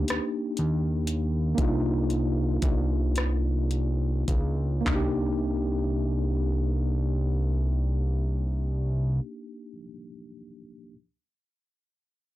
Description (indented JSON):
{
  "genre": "slow six-eight R&B",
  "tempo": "34-41 BPM (dotted quarters)",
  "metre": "6/8",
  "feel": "straight",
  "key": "C minor",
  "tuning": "A4 = 440 Hz",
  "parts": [
    { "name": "tine electric piano", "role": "accompaniment", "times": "0.0-11.0 s", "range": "Bb3 to G4", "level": "-30 LUFS", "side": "left 1 dB", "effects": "overdrive, medium stereo tremolo" },
    { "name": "fat analog bass", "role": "bass", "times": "0.0-9.2 s", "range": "C2 to Eb2", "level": "-26 LUFS", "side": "equal", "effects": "transformer saturation" },
    { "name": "smooth R&B drum kit", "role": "drums", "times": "0.1-5.1 s", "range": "handclaps, hi-hat, kick drum, rim click, toms", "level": "-28 LUFS", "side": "equal", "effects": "none" }
  ],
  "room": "little or no reverb",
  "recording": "blown-out, overdriven recording, overdrive",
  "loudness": "-24 LUFS",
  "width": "side -15 dB against mid",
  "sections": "0.0-4.9 A section; 4.9-8.4 B section",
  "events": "slowing down 0.0-4.9",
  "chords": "0.0 Cm9"
}